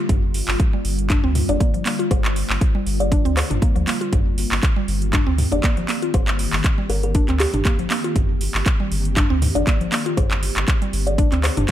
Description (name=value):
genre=afro house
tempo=119 BPM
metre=4/4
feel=swing 54% on 16ths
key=unclear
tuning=A4 = 441 Hz
part: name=ethereal airy pad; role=sustained chords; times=0.0-11.7 s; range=D3 to G4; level=-29 LUFS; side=left 1 dB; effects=ensemble chorus, built-in reverb, sidechain pumping
part: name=mallet-like synth pluck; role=arpeggios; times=0.0-11.7 s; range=F3 to F4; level=-26 LUFS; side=equal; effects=chorus, sidechain pumping, ping-pong delay
part: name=warm sub bass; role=bass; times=0.1-11.7 s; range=G1 to D2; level=-23 LUFS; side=equal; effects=sidechain pumping
part: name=electronic kick drum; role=drums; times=0.1-11.7 s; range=none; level=-19 LUFS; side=equal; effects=none
part: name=house drum kit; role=drums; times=0.1-11.7 s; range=handclaps, hi-hat, toms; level=-24 LUFS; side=right 1 dB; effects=none
part: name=kalimba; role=melody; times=1.5-11.7 s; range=G4 to D5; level=-29 LUFS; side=equal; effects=ping-pong delay
room=digital ambience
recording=none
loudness=-17 LUFS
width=side -12 dB against mid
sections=0.0-11.7 A section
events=none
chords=0.0 Gm7; 4.1 Cm7/G